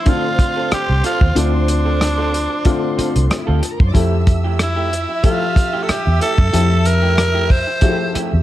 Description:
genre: lush 1970s-style soul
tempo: 93 BPM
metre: 4/4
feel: swing 54% on 16ths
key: F major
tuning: A4 = 442 Hz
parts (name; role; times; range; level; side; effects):
- breathy tenor saxophone; melody; 0.0-8.2 s; D4 to C5; -20 LUFS; right 1 dB; slapback echo
- dark studio string section; second line; 0.0-8.4 s; E4 to E6; -28 LUFS; right 2 dB; none
- dark baby grand piano; accompaniment; 0.0-8.4 s; D3 to A5; -23 LUFS; left 5 dB; none
- electric guitar through a small old amp; riff; 0.1-8.4 s; A3 to A4; -27 LUFS; right 6 dB; none
- warm soul drum kit; drums; 0.1-8.3 s; hi-hat, kick drum, rim click; -16 LUFS; equal; none
- vintage muted fingered electric bass; bass; 0.7-8.4 s; C2 to Gb2; -17 LUFS; equal; none
room: studio ambience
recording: dark, warm production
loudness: -14 LUFS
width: side -14 dB against mid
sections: 0.0-8.4 A section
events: none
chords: 0.0 Dm7; 3.9 Fmaj9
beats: 0.07 0.71 | 1.36 2.00 2.65 3.30 | 3.94 4.59 5.24 5.88 | 6.53 7.18 7.82

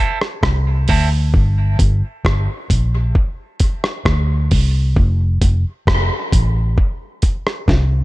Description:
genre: dub reggae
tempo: 66 BPM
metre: 4/4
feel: straight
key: unclear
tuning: A4 = 444 Hz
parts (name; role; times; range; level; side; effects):
- electric guitar at the edge of break-up; accompaniment; 0.0-1.2 s; C4 to A4; -25 LUFS; right 5 dB; high-pass filter, dub echo
- dusty soul sampler-style drum kit; drums; 0.2-7.9 s; hi-hat, kick drum, rim click, snare drum; -17 LUFS; equal; none
- vintage muted fingered electric bass; bass; 0.4-8.0 s; F1 to D2; -15 LUFS; equal; none
room: little or no reverb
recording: none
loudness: -14 LUFS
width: side -19 dB against mid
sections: 0.0-8.0 A section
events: filter sweep on clean electric guitar 0.0-1.3; drum fill 7.7-8.0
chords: 0.0 Fmaj7 (rootless); 1.3 Gm; 5.0 F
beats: 0.43 | 1.34 2.25 3.15 4.06 | 4.97 5.87 6.78 7.68

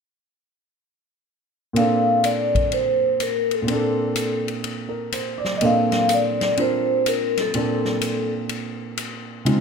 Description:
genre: modal jazz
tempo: 125 BPM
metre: 4/4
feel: swing 66% on 8ths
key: Bb major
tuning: A4 = 439 Hz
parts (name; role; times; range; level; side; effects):
- warm concert grand piano; accompaniment; 1.7-9.6 s; Bb2 to D5; -23 LUFS; right 2 dB; none
- vibraphone with medium mallets; melody; 1.8-8.3 s; A4 to F5; -21 LUFS; left 1 dB; none
- swinging big-band drum kit; drums; 1.8-9.6 s; hi-hat, kick drum, ride cymbal, snare drum; -28 LUFS; left 2 dB; none
room: little or no reverb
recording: close, detailed microphones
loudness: -19 LUFS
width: side -6 dB against mid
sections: 1.8-9.6 A section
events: none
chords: 1.8 Bbmaj9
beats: | 1.75 2.23 2.72 3.20 | 3.68 4.16 4.64 5.12 | 5.61 6.09 6.57 7.05 | 7.53 8.01 8.50 8.98 | 9.46

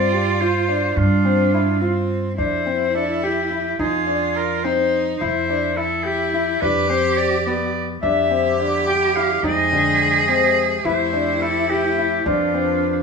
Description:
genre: contemporary instrumental, chamber music in an uneven meter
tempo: 213 BPM (eighths)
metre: 5/8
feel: straight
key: unclear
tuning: A4 = 440 Hz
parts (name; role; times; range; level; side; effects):
- clear oboe; melody; 0.0-13.0 s; F4 to G5; -22 LUFS; left 1 dB; none
- clear cello; second line; 0.0-13.0 s; C4 to Ab4; -22 LUFS; right 4 dB; none
- felt-muted upright piano; arpeggios; 0.0-13.0 s; D3 to G4; -22 LUFS; left 4 dB; none
- upright bass; bass; 0.0-13.0 s; F2 to G2; -26 LUFS; right 1 dB; none
- mellow woodwind section; sustained chords; 8.0-13.0 s; C3 to G5; -28 LUFS; left 1 dB; none
room: moderate studio reverb, RT60 0.8 s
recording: studio ambience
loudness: -17 LUFS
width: side -5 dB against mid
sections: 0.0-2.4 A section; 2.4-13.0 B section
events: none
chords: 0.0 G7sus4; 2.4 Cadd9/F; 3.8 Ab/F; 5.2 Fmaj13; 6.6 G7/F; 8.0 Cmaj9/F; 9.4 Abmaj7/F; 10.9 Am7/F; 12.3 G7/F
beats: 0.13 0.41 0.69 | 0.98 1.26 1.54 1.82 2.11 | 2.39 2.67 2.95 3.24 3.52 | 3.80 4.08 4.37 4.65 4.93 | 5.21 5.50 5.78 6.06 6.34 | 6.63 6.91 7.19 7.47 7.75 | 8.04 8.32 8.60 8.88 9.16 | 9.45 9.73 10.01 10.29 10.57 | 10.86 11.14 11.42 11.70 11.98 | 12.26 12.55 12.83

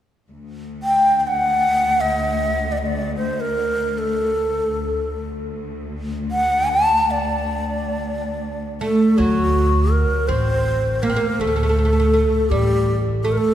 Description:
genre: persian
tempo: free time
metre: none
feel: none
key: D dastgah homayun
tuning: A4 = 440 Hz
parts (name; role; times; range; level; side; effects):
- clear symphonic cello section; drone; 0.3-9.3 s; D2; -28 LUFS; left 2 dB; none
- breathy bright low ney; melody; 0.8-13.5 s; F#4 to A5; -20 LUFS; equal; none
- oud; second line; 8.8-13.5 s; F#3 to C4; -21 LUFS; right 1 dB; none
- upright bass; bass; 9.2-13.4 s; A1 to D2; -20 LUFS; equal; none
room: wet church reverb, RT60 3.6 s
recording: recorded in a church or concert hall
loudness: -17 LUFS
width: side -11 dB against mid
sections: 0.3-9.2 A section; 9.2-13.5 B section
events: none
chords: none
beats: free time

